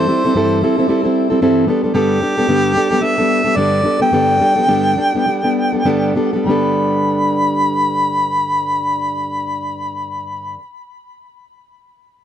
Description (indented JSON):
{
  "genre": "pop",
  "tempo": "96-113 BPM",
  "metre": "4/4",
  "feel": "swing 60% on 16ths",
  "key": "G major",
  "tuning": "A4 = 441 Hz",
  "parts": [
    { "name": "mellow harmonica", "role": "melody", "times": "0.0-10.5 s", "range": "G4 to B5", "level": "-17 LUFS", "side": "equal", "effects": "digital delay" },
    { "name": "fingerpicked plugged-in steel-string acoustic guitar", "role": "accompaniment", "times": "0.0-10.6 s", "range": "G2 to A4", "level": "-16 LUFS", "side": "equal", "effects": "none" }
  ],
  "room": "light reverb",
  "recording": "dark, warm production",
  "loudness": "-13 LUFS",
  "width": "side -10 dB against mid",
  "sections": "0.0-6.5 A section; 6.5-11.5 B section",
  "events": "slowing down 1.9-6.5",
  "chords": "0.0 C6/G; 1.7 Gadd9",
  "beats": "0.35 0.88 1.41 | 1.94 2.47 3.01 3.55 | 4.11 4.67 5.25 5.85 | 6.46 7.09 7.71 8.34 | 8.97 9.59 10.22"
}